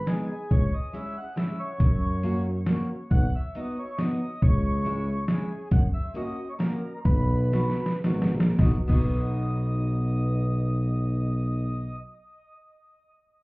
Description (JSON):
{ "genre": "alpine folk, alpine dance band", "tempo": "105-140 BPM", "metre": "3/4", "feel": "swing 54% on 8ths", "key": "B major", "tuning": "A4 = 440 Hz", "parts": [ { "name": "mellow accordion", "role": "melody", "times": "0.0-12.0 s", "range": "G#4 to F#5", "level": "-36 LUFS", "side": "right 1 dB", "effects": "tape echo" }, { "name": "mellow tuba", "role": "bass", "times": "0.0-12.0 s", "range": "G#1 to F#2", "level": "-26 LUFS", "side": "equal", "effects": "none" }, { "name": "picked steel-string acoustic guitar", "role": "accompaniment", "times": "0.1-12.0 s", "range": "G#3 to F#4", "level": "-33 LUFS", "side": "left 1 dB", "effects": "none" }, { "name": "trip hop sampler-style drum kit", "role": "drums", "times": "0.1-9.0 s", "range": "crash cymbal, hi-hat, kick drum, snare drum", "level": "-23 LUFS", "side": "equal", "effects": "none" } ], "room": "light reverb", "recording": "heard muffled through a wall, club reverb, EQ", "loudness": "-23 LUFS", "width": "side -24 dB against mid", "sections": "0.0-8.6 A section; 8.6-12.0 B section", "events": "slowing down 5.7-8.6; drum fill 7.5-8.6", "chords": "0.0 G#m; 0.5 C#m; 1.8 F#; 3.1 B; 4.4 C#m; 5.7 F#; 7.0 B" }